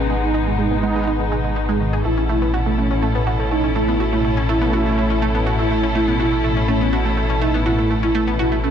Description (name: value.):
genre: techno.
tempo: 123 BPM.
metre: 4/4.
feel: straight.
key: unclear.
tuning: A4 = 440 Hz.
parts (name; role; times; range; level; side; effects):
expressive synth lead; melody; 0.0-8.7 s; C#4 to G#4; -23 LUFS; right 1 dB; wide subtle chorus, tape echo.
muted chamber string section; sustained chords; 0.0-8.7 s; G#3 to A4; -26 LUFS; left 2 dB; none.
analog pluck; arpeggios; 0.0-8.7 s; D#3 to G#4; -23 LUFS; right 3 dB; chorus, ping-pong delay.
dark detuned saw bass; bass; 0.0-8.7 s; G#1 to A1; -22 LUFS; left 1 dB; none.
swarming drone; drone; 0.0-8.7 s; B2; -29 LUFS; equal; built-in reverb.
warbly tape-like pad; texture; 0.0-8.7 s; D#4 to A5; -28 LUFS; left 1 dB; chorus, built-in reverb.
brassy analog pad; stabs; 0.7-7.7 s; G#3 to E4; -27 LUFS; right 1 dB; chorus, ping-pong delay.
room: light reverb.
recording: none.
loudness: -16 LUFS.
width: side -8 dB against mid.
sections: 0.0-8.7 A section.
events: filter sweep on synth pluck 0.0-8.7; filter sweep on analog synth lead 0.0-8.7.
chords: 0.0 G#m; 2.0 A.